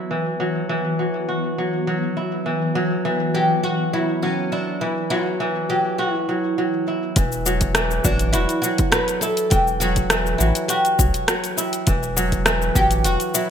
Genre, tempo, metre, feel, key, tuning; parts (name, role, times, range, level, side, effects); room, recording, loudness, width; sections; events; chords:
organic downtempo; 102 BPM; 4/4; straight; E minor; A4 = 436 Hz
granular cloud pad; sustained chords; 0.0-7.1 s; E3 to F#4; -27 LUFS; left 2 dB; built-in reverb, ensemble chorus, sidechain pumping
kora; arpeggios; 0.0-13.5 s; E3 to F#4; -23 LUFS; right 1 dB; low-pass filter, ping-pong delay
afro-pop drum kit; drums; 0.1-13.5 s; cabasa, hi-hat, rim click; -21 LUFS; left 1 dB; low-pass filter on snare, low-pass filter on hats, low-pass filter on perc, gated reverb
oud; melody; 3.3-13.5 s; C#4 to B4; -23 LUFS; equal; digital delay
warm sub bass; bass; 7.2-13.2 s; E1 to B1; -23 LUFS; equal; sidechain pumping
electronic kick drum; drums; 7.2-12.9 s; -22 LUFS; equal; overdrive
moderate plate reverb, RT60 1.6 s, studio reverb; bright 1980s-style digital production; -18 LUFS; side -8 dB against mid
0.0-7.2 A section; 7.2-13.5 B section
filter sweep on ambient pad 0.0-7.2
0.0 Esus2; 7.2 Emadd9